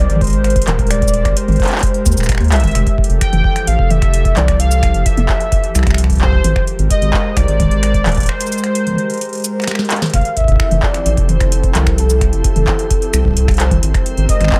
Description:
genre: IDM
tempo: 130 BPM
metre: 4/4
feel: straight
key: F major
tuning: A4 = 438 Hz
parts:
  - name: warm velvety synth lead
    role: melody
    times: 0.0-14.6 s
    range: A4 to G5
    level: -23 LUFS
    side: equal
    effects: chorus, cassette tape, dub echo
  - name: warbly tape-like pad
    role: sustained chords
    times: 0.0-14.6 s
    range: E3 to C5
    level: -25 LUFS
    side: equal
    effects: chorus, built-in reverb
  - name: round analog bass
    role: bass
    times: 0.0-14.5 s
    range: Eb1 to Eb2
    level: -17 LUFS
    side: equal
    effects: none
  - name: booming analog drum machine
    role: drums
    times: 0.1-14.6 s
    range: cabasa, finger snaps, handclaps, hi-hat, snare drum, toms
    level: -23 LUFS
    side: equal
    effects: overdrive
  - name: electronic kick drum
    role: drums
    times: 0.2-14.6 s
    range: none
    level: -19 LUFS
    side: equal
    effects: overdrive
  - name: backwards swelling texture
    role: texture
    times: 10.1-14.6 s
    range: C4 to C5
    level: -32 LUFS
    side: equal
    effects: built-in reverb, sidechain pumping
room: little or no reverb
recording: none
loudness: -14 LUFS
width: mono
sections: 0.0-14.6 A section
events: break 8.3-10.1; drum fill 9.7-10.1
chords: 0.0 Abmaj9; 2.8 Fmaj9; 6.4 Abmaj9; 10.1 Fmaj9; 13.8 Abmaj9

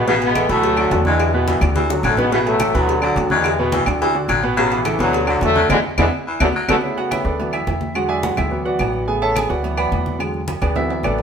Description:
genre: latin, salsa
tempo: 213 BPM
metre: 4/4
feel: straight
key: unclear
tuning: A4 = 439 Hz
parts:
  - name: bright trombone section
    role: melody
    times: 0.0-6.8 s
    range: C#3 to B3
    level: -20 LUFS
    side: left 1 dB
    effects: none
  - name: clear grand piano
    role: accompaniment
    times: 0.0-11.2 s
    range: B2 to B5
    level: -21 LUFS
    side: right 1 dB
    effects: none
  - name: upright bass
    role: bass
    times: 0.0-11.2 s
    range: A1 to E2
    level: -24 LUFS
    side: equal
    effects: none
  - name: raspy baritone saxophone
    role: second line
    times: 0.1-6.7 s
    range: C#3 to F#3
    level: -22 LUFS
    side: left 2 dB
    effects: none
  - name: congas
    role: percussion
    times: 0.1-11.2 s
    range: none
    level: -28 LUFS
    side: left 1 dB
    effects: none
  - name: cowbell and bongos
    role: percussion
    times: 0.1-6.8 s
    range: none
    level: -28 LUFS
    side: left 2 dB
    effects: none
  - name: agogo bells and timbales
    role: percussion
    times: 0.2-11.2 s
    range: none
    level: -28 LUFS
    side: right 4 dB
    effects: none
  - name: claves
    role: percussion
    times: 0.4-11.2 s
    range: none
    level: -28 LUFS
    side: left 2 dB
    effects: none
room: moderate stone room reverb, RT60 1.1 s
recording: band playing live in one room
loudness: -16 LUFS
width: side -7 dB against mid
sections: 0.0-6.8 A section; 6.8-11.2 B section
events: drum fill 1.6-2.3, 5.7-6.8, 10.8-11.2; band accent 5.7-6.8; grand piano solo 6.8-11.2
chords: 0.1 Aadd9; 0.6 D6; 2.3 Aadd9; 2.9 D6; 4.6 Aadd9; 5.1 D6; 5.7 E7(no3); 6.3 D6; 6.8 Aadd9; 7.4 D6; 7.9 E7; 8.5 D6; 9.1 Aadd9; 9.6 D6; 10.2 E7

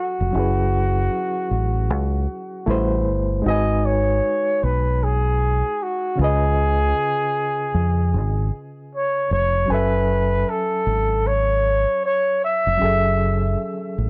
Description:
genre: lo-fi hip hop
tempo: 77 BPM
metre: 4/4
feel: swing 64% on 16ths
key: F# dorian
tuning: A4 = 441 Hz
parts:
  - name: trumpet with bucket mute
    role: melody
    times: 0.0-13.9 s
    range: F#4 to E5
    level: -24 LUFS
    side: equal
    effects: low-pass filter
  - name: overdriven reed electric piano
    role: accompaniment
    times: 0.0-14.1 s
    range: C#3 to G#5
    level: -29 LUFS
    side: equal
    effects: fast tremolo, low-pass filter
  - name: deep dub fingered electric bass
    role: bass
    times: 0.2-14.1 s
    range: E#1 to E#2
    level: -23 LUFS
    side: equal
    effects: transformer saturation
room: moderate studio reverb, RT60 0.5 s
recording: worn, warbling old tape, cassette tape, warbly pitch drift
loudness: -21 LUFS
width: mono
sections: 0.0-14.1 A section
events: none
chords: 0.0 F#m9; 2.7 Am7; 3.5 G#m7; 6.2 C#7; 9.7 F#m9

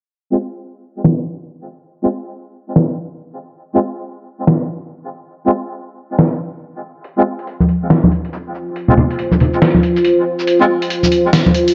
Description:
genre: deep dubstep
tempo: 140 BPM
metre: 4/4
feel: swing 62% on 16ths, half-time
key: F minor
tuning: A4 = 439 Hz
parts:
  - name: melodica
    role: stabs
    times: 0.3-10.7 s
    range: Ab3 to F4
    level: -21 LUFS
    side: equal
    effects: low-pass filter, dub echo
  - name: trip hop sampler-style drum kit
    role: drums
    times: 1.0-11.7 s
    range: hi-hat, shaker, snare drum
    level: -17 LUFS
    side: equal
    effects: low-pass filter on snare, low-pass filter on hats, low-pass filter on perc
  - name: dark analog pad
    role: sustained chords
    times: 8.6-11.7 s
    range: F4 to C5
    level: -18 LUFS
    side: equal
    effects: chorus
  - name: congas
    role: percussion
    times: 7.6-11.5 s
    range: none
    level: -16 LUFS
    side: equal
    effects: none
room: moderate echo chamber reverb, RT60 1.4 s, small room ambience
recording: low-pass filter, nothing above 7.7 kHz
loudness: -16 LUFS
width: mono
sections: 0.2-11.7 A section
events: filter sweep on drum 0.2-11.7; filter sweep 0.2-11.7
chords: 0.2 F5

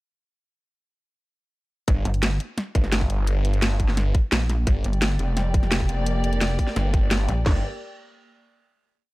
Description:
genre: dark technical drum and bass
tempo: 172 BPM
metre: 4/4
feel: straight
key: G minor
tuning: A4 = 440 Hz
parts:
  - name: snarling distorted saw bass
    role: bass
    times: 1.9-7.6 s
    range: G1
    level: -23 LUFS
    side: equal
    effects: distortion, tube saturation
  - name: drum and bass drum kit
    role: drums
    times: 1.9-7.5 s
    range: crash cymbal, kick drum, snare drum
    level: -21 LUFS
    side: equal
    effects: none
  - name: drum and bass drum kit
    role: drums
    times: 1.9-7.4 s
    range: hi-hat, snare drum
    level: -26 LUFS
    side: equal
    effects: overdrive
  - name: pulsing pluck wobble bass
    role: bass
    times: 2.1-7.4 s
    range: F1 to Bb1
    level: -23 LUFS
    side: equal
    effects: chorus
  - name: dark studio string section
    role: sustained chords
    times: 4.7-7.6 s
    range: Bb3 to D5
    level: -31 LUFS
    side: left 1 dB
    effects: sidechain pumping
room: little or no reverb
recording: dark, warm production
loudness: -20 LUFS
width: side -20 dB against mid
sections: 1.9-7.5 drop; 7.5-8.9 final chord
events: drop 1.9-7.5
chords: 1.9 Gm

